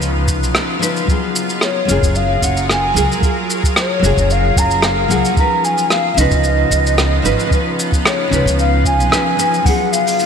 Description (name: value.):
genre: sunset chillout.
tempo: 112 BPM.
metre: 4/4.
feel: swing 54% on 16ths.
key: F# major.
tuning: A4 = 437 Hz.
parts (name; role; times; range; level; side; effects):
nylon-string guitar; accompaniment; 0.0-10.3 s; E#3 to B4; -20 LUFS; moving between left 6 dB and right 7 dB; auto-pan, vintage 12-bit sampler grit, ping-pong delay.
shimmering ambient pad; sustained chords; 0.0-10.3 s; C#3 to A#4; -23 LUFS; equal; chorus, built-in reverb.
upright bass; bass; 0.0-9.1 s; F#1 to C#2; -17 LUFS; equal; none.
vintage brush drum kit; drums; 0.0-10.3 s; hi-hat, rim click, shaker; -20 LUFS; equal; none.
electronic kick drum; drums; 0.3-9.8 s; none; -17 LUFS; equal; none.
mellow hollow concert flute; melody; 1.6-10.3 s; C#5 to A#5; -18 LUFS; equal; digital delay.
room: moderate lush hall reverb, RT60 2.1 s.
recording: bright 1980s-style digital production.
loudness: -13 LUFS.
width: side -7 dB against mid.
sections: 0.0-9.7 A section.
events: none.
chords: 0.0 C#9; 1.1 F#maj9; 5.4 C#9; 9.7 F#maj9.